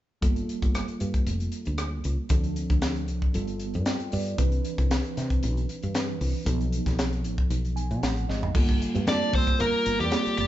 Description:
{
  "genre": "electric jazz fusion",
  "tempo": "115 BPM",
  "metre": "4/4",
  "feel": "straight",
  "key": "unclear",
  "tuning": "A4 = 440 Hz",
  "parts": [
    { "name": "mellow tine electric piano", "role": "accompaniment", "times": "0.2-10.5 s", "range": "E3 to Ab5", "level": "-31 LUFS", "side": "right 3 dB", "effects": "medium stereo tremolo" },
    { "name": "woody fretless electric bass", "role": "bass", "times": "0.2-10.5 s", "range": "F1 to C3", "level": "-29 LUFS", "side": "equal", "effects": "none" },
    { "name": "crisp fusion drum kit", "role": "drums", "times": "0.2-10.5 s", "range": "crash cymbal, hi-hat, kick drum, rim click, snare drum, toms", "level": "-27 LUFS", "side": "equal", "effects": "none" },
    { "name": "congas", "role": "percussion", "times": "8.9-9.5 s", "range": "none", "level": "-35 LUFS", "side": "left 1 dB", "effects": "none" },
    { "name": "dark smooth lead guitar", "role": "melody", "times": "9.1-10.5 s", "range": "G4 to D5", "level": "-25 LUFS", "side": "left 3 dB", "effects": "overdrive" },
    { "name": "growling tenor saxophone", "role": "second line", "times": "9.1-10.5 s", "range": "G3 to D4", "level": "-32 LUFS", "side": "right 9 dB", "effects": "none" }
  ],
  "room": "light reverb",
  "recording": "band playing live in one room, nothing above 7.8 kHz",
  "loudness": "-24 LUFS",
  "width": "side -13 dB against mid",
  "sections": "0.2-8.6 A section; 8.6-10.5 B section",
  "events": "tine electric piano fill 3.6-4.4, 7.5-8.6; drum fill 8.3",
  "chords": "0.2 Gm9; 2.3 Dm7; 3.3 G9; 4.4 Cmaj9; 6.5 B7#11; 8.6 Gm9"
}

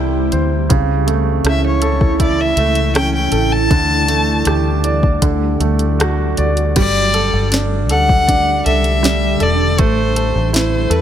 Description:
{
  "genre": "pop ballad",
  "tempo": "80 BPM",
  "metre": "4/4",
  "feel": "straight",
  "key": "unclear",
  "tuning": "A4 = 440 Hz",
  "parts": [
    { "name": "clear baby grand piano", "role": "accompaniment", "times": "0.0-11.0 s", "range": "C3 to D5", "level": "-19 LUFS", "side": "right 3 dB", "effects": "none" },
    { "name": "shimmering ambient pad", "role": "sustained chords", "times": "0.0-11.0 s", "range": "C#3 to G4", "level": "-22 LUFS", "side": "equal", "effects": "chorus, built-in reverb" },
    { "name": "vintage muted fingered electric bass", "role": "bass", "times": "0.0-11.0 s", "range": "E1 to E2", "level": "-18 LUFS", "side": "equal", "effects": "none" },
    { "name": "smooth R&B drum kit", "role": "drums", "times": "0.3-11.0 s", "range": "crash cymbal, hi-hat, kick drum, rim click, snare drum", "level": "-18 LUFS", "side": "equal", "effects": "none" },
    { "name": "warm violin", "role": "melody", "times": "1.5-11.0 s", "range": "B4 to A5", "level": "-18 LUFS", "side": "left 2 dB", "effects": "none" }
  ],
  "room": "light reverb",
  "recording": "none",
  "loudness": "-13 LUFS",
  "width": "side -10 dB against mid",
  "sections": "0.0-6.8 A section; 6.8-11.0 B section",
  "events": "none",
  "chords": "0.0 C; 0.7 A/C#; 3.7 Dsus4; 5.2 D; 6.8 Gsus2; 9.8 Am"
}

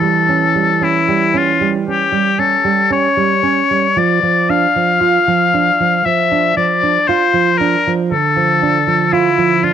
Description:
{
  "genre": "romantic duo for oboe and classical guitar",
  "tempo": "58 BPM",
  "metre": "4/4",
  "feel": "rubato",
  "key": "D minor",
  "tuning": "A4 = 442 Hz",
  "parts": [
    { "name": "bright oboe", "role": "melody", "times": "0.0-9.7 s", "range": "E4 to F5", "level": "-13 LUFS", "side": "left 5 dB", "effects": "cassette tape" },
    { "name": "nylon-string guitar", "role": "accompaniment", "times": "0.0-9.7 s", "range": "D3 to F4", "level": "-16 LUFS", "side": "right 7 dB", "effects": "cassette tape" }
  ],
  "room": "light reverb, small room ambience",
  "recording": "home recording on cassette",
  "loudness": "-11 LUFS",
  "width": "side -9 dB against mid",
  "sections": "0.0-9.7 A section",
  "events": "none",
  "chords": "0.0 A7/E; 4.0 Dm/F; 8.1 Dm"
}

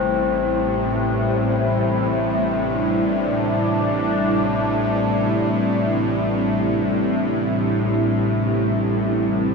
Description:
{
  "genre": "ambient",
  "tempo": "free time",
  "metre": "none",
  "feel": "none",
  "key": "unclear",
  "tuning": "A4 = 440 Hz",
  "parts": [
    { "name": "sweeping resonant pad", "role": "sustained chords", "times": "0.0-9.5 s", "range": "C3 to E4", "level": "-21 LUFS", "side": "right 1 dB", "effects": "chorus" },
    { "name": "tubular bells", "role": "arpeggios", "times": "0.0-9.5 s", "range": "C4", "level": "-27 LUFS", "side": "left 8 dB", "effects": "tape echo" },
    { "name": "bowed-like drone", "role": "drone", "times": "0.0-9.5 s", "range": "A1 to A2", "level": "-22 LUFS", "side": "left 1 dB", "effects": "built-in reverb" }
  ],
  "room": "wet cathedral reverb, RT60 7.0 s",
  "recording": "none",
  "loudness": "-18 LUFS",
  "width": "side -4 dB against mid",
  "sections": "0.0-9.5 A section",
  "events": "none",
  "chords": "0.0 C/A"
}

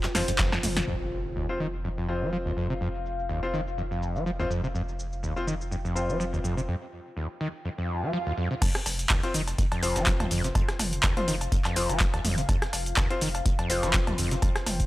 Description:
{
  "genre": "acid house",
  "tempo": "124 BPM",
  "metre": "4/4",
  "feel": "swing 55% on 16ths",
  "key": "unclear",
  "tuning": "A4 = 440 Hz",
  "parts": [
    { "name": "overdriven acid bass", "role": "riff", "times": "0.0-14.5 s", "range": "Eb2 to F3", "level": "-31 LUFS", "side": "equal", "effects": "distortion, wide subtle chorus, tape echo" },
    { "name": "electro analog drum machine", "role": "drums", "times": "0.0-14.9 s", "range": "cowbell, crash cymbal, handclaps, hi-hat, ride cymbal, rim click, shaker, snare drum, toms", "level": "-28 LUFS", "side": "equal", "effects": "low-pass filter on perc, low-pass filter on hats, low-pass filter on cymbals, low-pass filter on snare, low-pass filter on toms, low-pass filter on room" },
    { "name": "electronic snare drum and tambourine", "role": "drums", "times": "0.0-0.8, 8.6-14.8 s", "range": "none", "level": "-39 LUFS", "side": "equal", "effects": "none" },
    { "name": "deep dark ambient pad", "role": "texture", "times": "0.0-14.9 s", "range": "F4 to G5", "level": "-38 LUFS", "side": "left 3 dB", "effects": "chorus, built-in reverb, sidechain pumping" },
    { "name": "bright grand piano", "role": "stabs", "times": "0.1-14.9 s", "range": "C4 to C5", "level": "-34 LUFS", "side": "left 2 dB", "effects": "low-pass filter, tape echo" },
    { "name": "saturated sub bass", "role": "bass", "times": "0.1-14.9 s", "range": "F1", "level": "-34 LUFS", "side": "equal", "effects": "sidechain pumping" },
    { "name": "electronic kick drum", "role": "drums", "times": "0.4-0.5, 8.6-14.9 s", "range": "none", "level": "-26 LUFS", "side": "equal", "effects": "none" },
    { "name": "impact and swell", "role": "sound effects", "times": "0.9-2.8, 7.8-8.6 s", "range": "none", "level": "-37 LUFS", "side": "right 1 dB", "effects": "none" }
  ],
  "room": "little or no reverb",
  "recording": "dry, gritty hardware recording",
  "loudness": "-25 LUFS",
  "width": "side -17 dB against mid",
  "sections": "0.9-8.6 A section; 8.6-14.9 B section",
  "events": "drum fill 0.1-0.9; impact 0.9-2.8; filter sweep on acid bass 0.9-8.6; filter sweep on grand piano 0.9-8.6; swell 7.8-8.6; drop 8.6-14.9",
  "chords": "0.0 F5"
}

